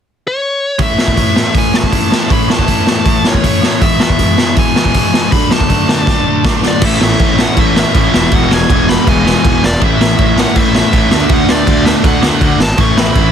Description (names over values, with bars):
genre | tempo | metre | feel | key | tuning
punk rock | 160 BPM | 4/4 | straight | A major | A4 = 441 Hz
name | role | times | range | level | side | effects
dark smooth lead guitar | melody | 0.3-13.3 s | C#5 to C#6 | -18 LUFS | left 2 dB | overdrive
biting overdriven guitar | riff | 0.8-13.3 s | E2 to D4 | -18 LUFS | right 15 dB | none
sludgy distorted guitar | riff | 0.8-13.3 s | A2 to F#4 | -16 LUFS | left 13 dB | overdrive
raw garage drum kit | drums | 0.8-13.2 s | crash cymbal, hi-hat, kick drum, snare drum | -12 LUFS | right 1 dB | none
distorted electric guitar | riff | 6.8-13.3 s | E2 to D4 | -20 LUFS | right 2 dB | overdrive
fuzz picked electric bass | bass | 6.8-13.3 s | E1 to D2 | -17 LUFS | right 1 dB | overdrive
room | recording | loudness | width
light reverb | dense, heavily limited modern master | -9 LUFS | side -8 dB against mid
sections
0.8-6.8 A section; 6.8-13.3 B section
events
drum fill 6.1-6.8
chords
0.0 N.C.; 0.8 A; 3.8 E; 5.3 D; 6.8 A; 8.1 E; 9.8 A; 11.1 D; 12.8 A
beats
0.04 0.42 | 0.80 1.18 1.55 1.93 | 2.31 2.69 3.07 3.44 | 3.82 4.20 4.58 4.95 | 5.33 5.71 6.08 6.46 | 6.83 7.20 7.58 7.95 | 8.32 8.70 9.07 9.44 | 9.81 10.19 10.56 10.93 | 11.30 11.67 12.05 12.42 | 12.79 13.16